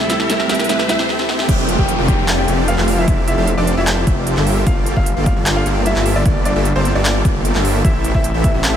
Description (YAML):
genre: future bass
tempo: 151 BPM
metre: 4/4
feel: half-time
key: F major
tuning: A4 = 440 Hz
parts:
  - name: bright concert grand piano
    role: melody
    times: 0.0-8.8 s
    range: C4 to G5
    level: -23 LUFS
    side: left 1 dB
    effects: sidechain pumping, tape echo
  - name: soft round pluck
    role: accompaniment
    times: 0.0-1.1 s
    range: G3 to G4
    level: -25 LUFS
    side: right 4 dB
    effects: chorus, sidechain pumping, tape echo
  - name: airy breathy pad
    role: sustained chords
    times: 0.0-1.1 s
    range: D2 to E4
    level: -37 LUFS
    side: equal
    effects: chorus, sidechain pumping
  - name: supersaw chords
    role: riff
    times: 0.0-8.8 s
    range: Bb3 to G5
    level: -22 LUFS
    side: right 1 dB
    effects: sidechain pumping
  - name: big-room dance drum kit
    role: drums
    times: 0.0-8.7 s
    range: crash cymbal, handclaps, hi-hat, snare drum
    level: -22 LUFS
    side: equal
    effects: overdrive, high-pass filter on snare, high-pass filter on hats, high-pass filter on cymbals, high-pass filter on room
  - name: riser and downlifter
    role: sound effects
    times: 0.0-4.7 s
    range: none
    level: -23 LUFS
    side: equal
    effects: none
  - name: wide detuned saw bass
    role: bass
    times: 1.5-8.8 s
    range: F1 to A1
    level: -18 LUFS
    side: equal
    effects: chorus, sidechain pumping
  - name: electronic kick drum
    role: drums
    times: 1.5-8.5 s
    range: none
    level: -17 LUFS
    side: equal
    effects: overdrive
room: little or no reverb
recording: none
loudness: -13 LUFS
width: side -9 dB against mid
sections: 0.0-1.5 A section; 1.5-8.8 B section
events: build-up 0.0-1.5; drum fill 0.0-1.1, 1.1-1.5; riser 0.0-1.1; filter sweep on analog synth pad 0.0-1.5; break 1.1-1.5; drop 1.5-8.8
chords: 0.0 Dm9; 1.5 F69; 4.5 Gm9; 7.8 Am7